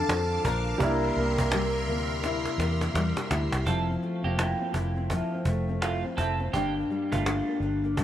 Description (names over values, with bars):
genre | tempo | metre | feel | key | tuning
indie pop, bedroom pop | 84 BPM | 4/4 | swing 60% on 16ths | F major | A4 = 440 Hz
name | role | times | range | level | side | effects
electric guitar through a small old amp | melody | 0.0-2.9 s | A4 to Bb4 | -31 LUFS | left 2 dB | lush chorus, analog delay
nylon-string guitar | accompaniment | 0.0-8.0 s | G2 to E4 | -30 LUFS | left 3 dB | lush chorus, warbly pitch drift
warm upright piano | accompaniment | 0.0-3.7 s | D3 to F4 | -34 LUFS | right 4 dB | none
string machine, full ensemble | sustained chords | 0.0-3.6 s | Bb4 to D6 | -35 LUFS | equal | ensemble chorus
vintage muted fingered electric bass | bass | 0.1-8.0 s | F1 to F2 | -30 LUFS | equal | none
cajon | drums | 0.1-8.0 s | none | -31 LUFS | equal | none
semi-hollow electric guitar | second line | 3.7-7.6 s | A3 to A4 | -33 LUFS | right 6 dB | wide subtle chorus, analog delay
room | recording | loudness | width
light reverb, small room ambience | none | -25 LUFS | side -11 dB against mid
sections
0.0-3.7 A section; 3.7-8.0 B section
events
drum fill 2.2-3.7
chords
0.0 Dm; 0.8 C7; 3.7 Fmaj7; 6.5 Gm